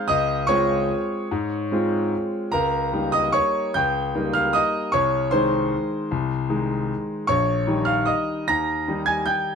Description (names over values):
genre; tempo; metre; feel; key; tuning
classical, piano waltz; 150 BPM; 3/4; uneven beats, rubato; unclear; A4 = 440 Hz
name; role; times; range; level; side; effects
bright grand piano; solo; 0.0-9.6 s; Bb1 to Bb6; -20 LUFS; equal; none
room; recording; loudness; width
moderate studio reverb, RT60 0.7 s; dark, warm production; -20 LUFS; side -6 dB against mid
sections
0.0-9.6 A section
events
none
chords
0.1 Dbmaj7; 2.5 Eb7/Db; 4.9 Ab/C; 7.3 Eb7/Bb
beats
| 0.09 0.48 0.89 | 1.30 1.70 2.12 | 2.52 2.92 3.33 | 3.75 4.15 4.55 | 4.93 5.32 5.72 | 6.11 6.49 6.90 | 7.29 7.67 8.07 | 8.49 8.88 9.28